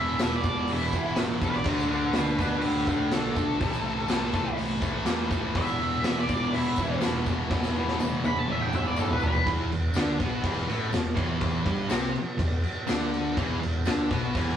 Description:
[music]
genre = garage rock duo or trio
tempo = 123 BPM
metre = 4/4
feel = straight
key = unclear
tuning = A4 = 439 Hz
[part]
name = octave-fuzz lead guitar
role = melody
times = 0.0-9.5 s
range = E4 to B5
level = -30 LUFS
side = right 1 dB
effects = distortion
[part]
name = thick fuzz guitar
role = riff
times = 0.0-14.6 s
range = E2 to D4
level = -28 LUFS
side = equal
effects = distortion
[part]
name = growling picked electric bass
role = bass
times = 0.0-14.6 s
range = E1 to E2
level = -37 LUFS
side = equal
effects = overdrive
[part]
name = tambourine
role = percussion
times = 0.1-14.0 s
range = none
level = -47 LUFS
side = left 4 dB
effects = none
[part]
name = raw garage drum kit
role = drums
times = 0.2-14.5 s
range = crash cymbal, hi-hat, kick drum, snare drum, toms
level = -28 LUFS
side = equal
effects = vintage 12-bit sampler grit
[sound]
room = wet studio reverb, RT60 0.5 s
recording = rough rehearsal-room recording, cassette tape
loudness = -24 LUFS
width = side -9 dB against mid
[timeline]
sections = 0.0-9.5 A section; 9.5-14.6 B section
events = drum fill 7.5-9.5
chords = 0.0 E5; 1.7 D; 3.6 Am/C; 5.6 E5; 9.5 Em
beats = 0.19 0.68 1.17 | 1.66 2.15 2.63 3.12 | 3.61 4.10 4.58 5.07 | 5.56 6.05 6.54 7.03 | 7.51 8.00 8.49 8.98 | 9.46 9.95 10.44 10.93 | 11.42 11.90 12.39 12.88 | 13.37 13.86 14.34

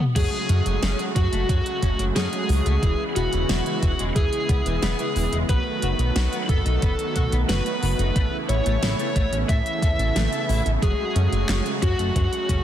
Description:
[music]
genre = synthwave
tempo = 90 BPM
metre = 4/4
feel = straight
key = F# dorian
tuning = A4 = 439 Hz
[part]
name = bluesy overdriven lead guitar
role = melody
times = 0.0-12.6 s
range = F#4 to E5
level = -28 LUFS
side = equal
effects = distortion, tape echo
[part]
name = soft synth bell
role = second line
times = 0.2-12.6 s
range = F#4 to E5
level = -34 LUFS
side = left 2 dB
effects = none
[part]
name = soft supersaw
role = sustained chords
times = 0.2-12.6 s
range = C#3 to F#4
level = -28 LUFS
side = right 1 dB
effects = sidechain pumping
[part]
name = electric guitar at the edge of break-up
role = riff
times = 0.2-12.5 s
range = E3 to A4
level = -33 LUFS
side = left 4 dB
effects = ensemble chorus, digital delay
[part]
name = chorused synth bass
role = bass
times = 0.2-12.6 s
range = E1 to F#2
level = -23 LUFS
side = equal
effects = none
[part]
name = electronic kick drum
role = drums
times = 0.2-12.6 s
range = none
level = -23 LUFS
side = equal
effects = small room ambience
[part]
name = pop drum kit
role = drums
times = 0.2-12.6 s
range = crash cymbal, handclaps, hi-hat, snare drum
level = -29 LUFS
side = equal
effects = small room ambience
[sound]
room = light reverb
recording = dense, heavily limited modern master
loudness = -20 LUFS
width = side -11 dB against mid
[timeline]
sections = 0.2-12.6 A section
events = break 0.0; drum fill 0.0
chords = 0.2 F#madd9; 2.8 E6; 5.5 B7; 8.2 Aadd9; 10.8 F#madd9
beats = | 0.16 0.83 1.49 2.16 | 2.83 3.49 4.16 4.83 | 5.49 6.16 6.83 7.49 | 8.16 8.83 9.49 10.16 | 10.83 11.49 12.16

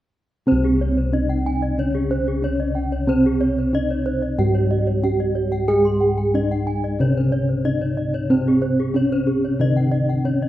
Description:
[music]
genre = Balinese gamelan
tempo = 92 BPM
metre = 4/4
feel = straight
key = C pelog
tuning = A4 = 440 Hz
[part]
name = gamelan-type bronze metallophone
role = melody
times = 0.5-10.5 s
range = C4 to Ab4-40c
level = -23 LUFS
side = right 1 dB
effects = none
[part]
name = gamelan-type bronze metallophone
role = accompaniment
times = 0.5-10.5 s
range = C3 to Ab3-40c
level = -30 LUFS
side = right 1 dB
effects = none
[part]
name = gamelan-type bronze metallophone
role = arpeggios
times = 0.5-10.5 s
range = Ab4-40c to C6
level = -29 LUFS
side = left 5 dB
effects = none
[part]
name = gamelan-type bossed gongs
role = bass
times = 0.5-10.5 s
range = C2 to Ab4-40c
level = -20 LUFS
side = equal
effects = none
[part]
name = gamelan-type bronze metallophone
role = arpeggios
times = 0.8-10.1 s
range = Ab4-40c to Ab5-40c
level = -31 LUFS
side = right 5 dB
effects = none
[sound]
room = light reverb, small room ambience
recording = rough home demo mix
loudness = -18 LUFS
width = side -14 dB against mid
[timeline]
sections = 0.5-10.5 A section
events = none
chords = none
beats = | 0.47 1.13 1.78 2.43 | 3.08 3.73 4.39 5.04 | 5.69 6.34 7.00 7.65 | 8.30 8.95 9.60 10.26

